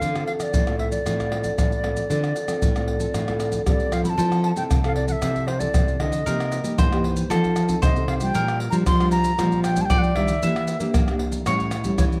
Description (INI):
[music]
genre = samba and choro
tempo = 115 BPM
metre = 4/4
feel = straight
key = D minor, F major from 4.2 s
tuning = A4 = 440 Hz
[part]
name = wooden flute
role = melody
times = 0.0-12.0 s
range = C5 to C6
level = -30 LUFS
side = equal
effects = none
[part]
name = nylon-string guitar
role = accompaniment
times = 0.0-12.2 s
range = G2 to A4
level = -30 LUFS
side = equal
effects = none
[part]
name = nylon-string guitar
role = bass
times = 0.0-12.2 s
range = A2 to Bb3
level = -28 LUFS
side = equal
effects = none
[part]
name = maracas, surdo, pandeiro and tamborim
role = percussion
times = 0.0-12.2 s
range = none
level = -26 LUFS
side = equal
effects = none
[part]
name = bowl-back mandolin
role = second line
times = 4.2-12.2 s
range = A4 to E5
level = -32 LUFS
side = equal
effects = none
[sound]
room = light reverb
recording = close, detailed microphones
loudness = -22 LUFS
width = mono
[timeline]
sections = 0.0-4.2 A section; 4.2-12.2 B section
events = none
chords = 0.0 Dm7; 4.2 Fmaj7; 6.3 Cm7; 7.3 F7; 8.3 Bb6; 10.4 Em7b5; 11.5 A7